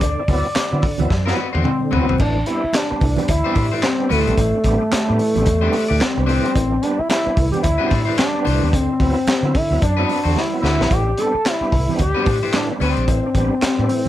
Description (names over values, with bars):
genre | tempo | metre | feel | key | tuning
funk | 110 BPM | 4/4 | swing 60% on 16ths | A dorian | A4 = 440 Hz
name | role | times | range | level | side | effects
expressive synth lead | melody | 0.0-14.1 s | A3 to D5 | -20 LUFS | left 1 dB | chorus
overdriven tonewheel organ | stabs | 0.0-14.1 s | A2 to E4 | -25 LUFS | right 2 dB | chorus vibrato, fast rotary speaker
vintage muted fingered electric bass | bass | 0.0-13.9 s | A1 to D3 | -21 LUFS | equal | none
crunchy breakbeat drum kit | drums | 0.0-14.0 s | crash cymbal, handclaps, hi-hat, kick drum, snare drum, toms | -22 LUFS | equal | none
congas | percussion | 0.0-14.1 s | none | -31 LUFS | right 8 dB | none
cowbell | percussion | 0.0-13.8 s | none | -35 LUFS | left 8 dB | none
electric guitar at the edge of break-up | accompaniment | 1.3-13.0 s | C4 to D5 | -24 LUFS | left 6 dB | lush chorus
room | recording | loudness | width
light reverb | none | -16 LUFS | side -13 dB against mid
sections
0.0-2.2 A section; 2.2-14.1 B section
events
drum fill 1.1-2.2, 10.4-10.9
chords
0.0 D13; 2.2 Am11; 8.7 D13; 10.9 Am11